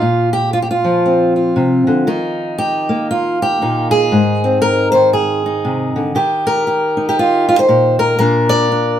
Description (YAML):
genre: folk, solo fingerstyle acoustic guitar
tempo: 117 BPM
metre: 4/4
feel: swing 61% on 8ths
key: unclear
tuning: A4 = 440 Hz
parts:
  - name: fingerpicked steel-string acoustic guitar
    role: solo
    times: 0.0-9.0 s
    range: Ab2 to D5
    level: -12 LUFS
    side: equal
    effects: none
room: moderate studio ambience, RT60 0.5 s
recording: band playing live in one room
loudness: -12 LUFS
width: side -10 dB against mid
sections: 0.0-9.0 A section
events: none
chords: 0.0 Bbsus2; 2.1 Ebadd9; 4.1 Ab; 6.2 Eb; 8.2 Bb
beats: | 0.02 0.53 1.04 1.55 | 2.06 2.57 3.09 3.60 | 4.11 4.62 5.13 5.64 | 6.15 6.66 7.17 7.68 | 8.20 8.71